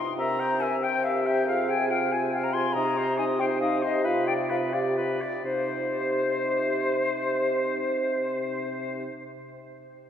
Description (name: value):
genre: quick classical-period movement for wind quintet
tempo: 83-95 BPM (dotted quarters)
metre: 6/8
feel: straight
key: C minor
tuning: A4 = 440 Hz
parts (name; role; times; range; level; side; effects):
- silver concert flute; melody; 0.0-9.0 s; C5 to C6; -29 LUFS; left 4 dB; none
- dark French horn; accompaniment; 0.0-9.1 s; Eb4 to Ab4; -33 LUFS; left 1 dB; none
- clear oboe; second line; 0.2-9.0 s; B4 to Ab5; -31 LUFS; left 2 dB; none
- dark clarinet; accompaniment; 0.2-9.0 s; Eb4 to C5; -35 LUFS; right 4 dB; none
- dark bassoon; bass; 0.2-9.0 s; C3; -30 LUFS; right 2 dB; none
room: wet cathedral reverb, RT60 4.9 s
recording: recorded in a church or concert hall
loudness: -24 LUFS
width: side -9 dB against mid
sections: 0.2-5.4 A section; 5.4-8.3 B section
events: slowing down 2.1-5.4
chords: 0.2 C7; 1.5 Fm/C; 2.8 Cm; 4.0 G7/C; 5.4 Cm